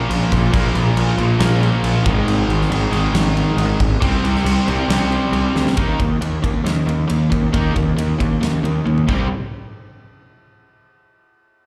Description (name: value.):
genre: hard rock.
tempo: 137 BPM.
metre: 4/4.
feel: straight.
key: unclear.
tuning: A4 = 441 Hz.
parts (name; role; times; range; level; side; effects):
cranked stack guitar; riff; 0.0-9.3 s; Ab2 to Eb4; -24 LUFS; equal; overdrive, slapback echo.
distorted electric guitar; riff; 0.0-9.3 s; Ab2 to Eb4; -26 LUFS; equal; distortion, slapback echo.
fuzz picked electric bass; bass; 0.1-9.3 s; Ab1 to Eb2; -21 LUFS; equal; overdrive.
huge arena drum kit; drums; 0.1-9.2 s; crash cymbal, kick drum, ride cymbal, snare drum, toms; -25 LUFS; equal; none.
room: studio reverb.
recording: live gig heard through the venue's PA, club reverb.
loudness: -18 LUFS.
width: mono.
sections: 0.0-5.8 A section; 5.8-9.3 B section; 9.3-11.1 C section.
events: drum fill 5.5, 8.9-9.3.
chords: 0.0 Bb5; 2.1 Ab5; 4.0 C5; 5.8 Eb5; 9.1 C5; 9.3 N.C..